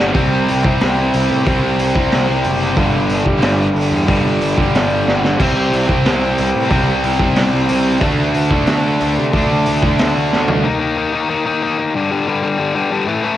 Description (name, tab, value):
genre	punk rock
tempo	183 BPM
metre	4/4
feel	straight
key	unclear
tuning	A4 = 441 Hz
part	distorted electric guitar	riff	0.0-10.6 s	G2 to D4	-21 LUFS	right 9 dB	overdrive, cassette tape
part	tight distorted guitar	riff	0.0-13.4 s	G2 to Eb4	-17 LUFS	left 4 dB	distortion, cassette tape
part	fuzz picked electric bass	bass	0.0-10.6 s	F#1 to C3	-21 LUFS	equal	overdrive
part	raw garage drum kit	drums	0.0-10.6 s	crash cymbal, hi-hat, kick drum, snare drum, toms	-19 LUFS	equal	cassette tape
part	distorted electric guitar	riff	0.1-10.7 s	G2 to D4	-22 LUFS	right 2 dB	distortion, cassette tape
room	small room ambience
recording	home recording on cassette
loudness	-13 LUFS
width	side -12 dB against mid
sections	0.2-10.6 A section; 10.6-13.4 B section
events	drum fill 0.0, 5.1-5.4, 10.3-10.6; half time 0.2-10.6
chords	0.2 C5; 2.8 G5; 5.4 C5; 8.0 D5; 10.6 Eb5; 11.9 G5